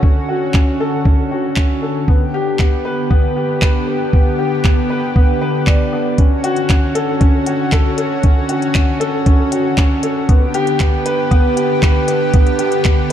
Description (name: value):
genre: piano and strings electronica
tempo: 117 BPM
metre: 4/4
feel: straight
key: D major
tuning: A4 = 440 Hz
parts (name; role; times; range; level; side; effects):
- lush unison pad; sustained chords; 0.0-13.1 s; D3 to G4; -20 LUFS; equal; chorus, sidechain pumping
- warm upright piano; riff; 0.0-13.1 s; B3 to D5; -18 LUFS; left 1 dB; digital delay
- electronic kick drum; drums; 0.0-13.0 s; none; -12 LUFS; equal; none
- warm sub bass; bass; 0.3-12.9 s; none; barely audible; none; none
- organic electronic drum kit; drums; 0.5-13.1 s; handclaps, hi-hat; -25 LUFS; equal; none
room: moderate echo chamber reverb, RT60 2.4 s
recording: dark, warm production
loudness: -12 LUFS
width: side -10 dB against mid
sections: 0.0-13.1 A section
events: build-up 0.0-13.1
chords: 0.0 Dmaj7; 2.1 G/D; 6.2 Dmaj7; 10.3 G/D